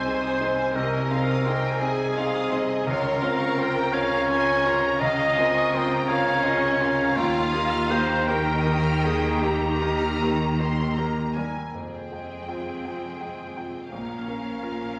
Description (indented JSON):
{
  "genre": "cinematic, emotional film score for orchestra",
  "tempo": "51-57 BPM (dotted quarters)",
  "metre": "6/8",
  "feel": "rubato",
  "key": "Bb dorian",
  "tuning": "A4 = 440 Hz",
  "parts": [
    { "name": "rich studio violin section", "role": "melody", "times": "0.0-15.0 s", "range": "Db5 to Bb5", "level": "-34 LUFS", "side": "equal", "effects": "none" },
    { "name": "bright symphonic violin section", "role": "second line", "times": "0.0-15.0 s", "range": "Ab4 to F6", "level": "-38 LUFS", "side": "equal", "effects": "none" },
    { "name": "clear clarinet", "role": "second line", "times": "0.0-10.6 s", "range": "F4 to Eb5", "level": "-28 LUFS", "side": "equal", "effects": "none" },
    { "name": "bright concert grand piano", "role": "accompaniment", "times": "0.0-15.0 s", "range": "Bb1 to G5", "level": "-29 LUFS", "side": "equal", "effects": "none" },
    { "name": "clear symphonic viola section", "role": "accompaniment", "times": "0.0-15.0 s", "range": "C4 to Eb5", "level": "-34 LUFS", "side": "equal", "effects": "none" },
    { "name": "rich symphonic cello section", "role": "bass", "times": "0.0-15.0 s", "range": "F2 to Eb3", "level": "-34 LUFS", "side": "equal", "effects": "none" },
    { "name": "rich symphonic double bass section", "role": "bass", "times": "0.0-14.6 s", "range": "F1 to Eb2", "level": "-37 LUFS", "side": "equal", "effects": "none" }
  ],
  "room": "wet recital hall reverb, RT60 1.6 s",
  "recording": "none",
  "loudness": "-24 LUFS",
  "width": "mono",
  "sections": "0.0-11.7 A section; 11.7-15.0 B section",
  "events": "none",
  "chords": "0.0 Ab/C; 2.9 Bbmadd9/Db; 7.2 Ebadd9; 11.7 Fmadd9; 13.9 Bbm",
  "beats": "| 0.75 1.81 | 2.87 3.94 | 5.01 6.08 | 7.17 8.28 | 9.43 10.59 | 11.74 12.85 | 13.93"
}